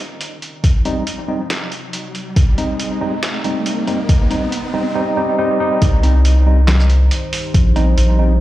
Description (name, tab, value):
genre	deep dubstep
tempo	139 BPM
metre	4/4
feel	swing 54% on 16ths, half-time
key	C minor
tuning	A4 = 440 Hz
part	deep dark ambient pad	sustained chords	0.0-8.4 s	G3 to Eb5	-30 LUFS	equal	chorus, built-in reverb
part	riser	sound effects	0.7-5.0 s	none	-28 LUFS	right 1 dB	none
part	trip hop sampler-style drum kit	drums	0.2-8.1 s	handclaps, hi-hat, shaker, snare drum	-24 LUFS	equal	high-pass filter on hats, high-pass filter on snare, high-pass filter on perc, high-pass filter on room
part	electronic kick drum	drums	0.6-7.6 s	none	-13 LUFS	equal	none
part	mellow tine electric piano	stabs	0.9-8.3 s	G3 to Eb4	-20 LUFS	equal	overdrive, fast stereo tremolo, low-pass filter, dub echo
part	saturated sub bass	bass	5.8-8.4 s	Bb1 to C2	-12 LUFS	equal	none
room	light reverb, digital ambience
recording	played on a big sound system in a bare room, large studio reverb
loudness	-13 LUFS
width	side -15 dB against mid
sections	0.0-5.8 A section; 5.8-8.4 B section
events	build-up 0.0-5.8; filter sweep on tine electric piano 0.0-5.8; riser 0.7-5.0; drop 5.8-8.4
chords	0.0 Cm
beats	0.21 | 0.64 1.07 1.50 1.93 | 2.36 2.80 3.23 3.66 | 4.09 4.52 4.95 5.39 | 5.82 6.25 6.68 7.11 | 7.54 7.98